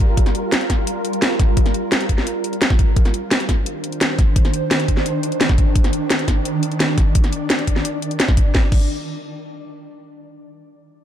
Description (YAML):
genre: dark technical drum and bass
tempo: 172 BPM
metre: 4/4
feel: straight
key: G minor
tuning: A4 = 440 Hz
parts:
  - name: swarming drone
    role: sustained chords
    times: 0.0-8.7 s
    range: Eb3 to D5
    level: -23 LUFS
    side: right 1 dB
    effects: built-in reverb, sidechain pumping
  - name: drum and bass drum kit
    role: drums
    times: 0.0-8.8 s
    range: crash cymbal, hi-hat, snare drum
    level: -21 LUFS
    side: equal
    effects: none
  - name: electronic kick drum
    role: drums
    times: 0.0-8.8 s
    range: none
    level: -16 LUFS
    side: equal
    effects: none
room: light reverb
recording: dark, warm production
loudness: -16 LUFS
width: side -10 dB against mid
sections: 0.0-8.5 A section; 8.5-9.9 B section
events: none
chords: 0.0 Gm7; 3.0 Cmadd9; 8.5 Gm7